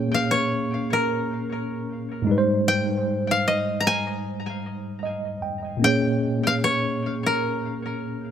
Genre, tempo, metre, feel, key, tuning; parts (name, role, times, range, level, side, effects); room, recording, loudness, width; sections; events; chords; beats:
R&B; 76 BPM; 4/4; swing 58% on 16ths; Bb dorian; A4 = 440 Hz
koto; melody; 0.0-8.3 s; Bb4 to Bb5; -25 LUFS; left 1 dB; analog delay
mellow tine electric piano; accompaniment; 0.0-8.3 s; Ab2 to G5; -24 LUFS; equal; medium stereo tremolo, analog delay
moderate echo chamber reverb, RT60 1.6 s; echo-heavy mix; -22 LUFS; side -9 dB against mid
0.0-8.3 A section
tine electric piano fill 4.6-5.8
0.0 Bbm7; 2.3 Abmaj13; 5.8 Bbm7
0.29 1.08 1.87 | 2.66 3.45 4.24 5.03 | 5.82 6.61 7.40 8.19